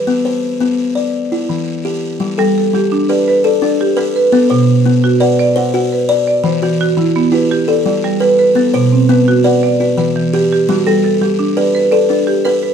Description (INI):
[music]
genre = southern african traditional, mbira-style interlocking cycle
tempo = 113 BPM (dotted quarters)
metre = 12/8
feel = straight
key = G major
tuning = A4 = 441 Hz
[part]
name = buzzing kalimba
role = arpeggios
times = 0.0-12.7 s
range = E3 to D5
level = -14 LUFS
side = left 4 dB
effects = none
[part]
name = marimba with medium hard mallets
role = arpeggios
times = 2.4-12.7 s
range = B2 to F#5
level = -14 LUFS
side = right 5 dB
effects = none
[sound]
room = wet studio reverb, RT60 0.5 s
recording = none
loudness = -11 LUFS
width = side -7 dB against mid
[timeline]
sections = 0.0-2.2 A section; 2.2-12.7 B section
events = none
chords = 0.1 Bm; 1.1 Em; 2.2 G; 4.3 Bm; 6.5 Em; 7.5 G; 8.6 Bm; 9.6 Em; 10.7 G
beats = | 0.08 0.62 1.15 1.68 | 2.21 2.75 3.28 3.81 | 4.34 4.87 5.40 5.93 | 6.46 6.98 7.51 8.04 | 8.57 9.10 9.63 10.16 | 10.69 11.22 11.75 12.27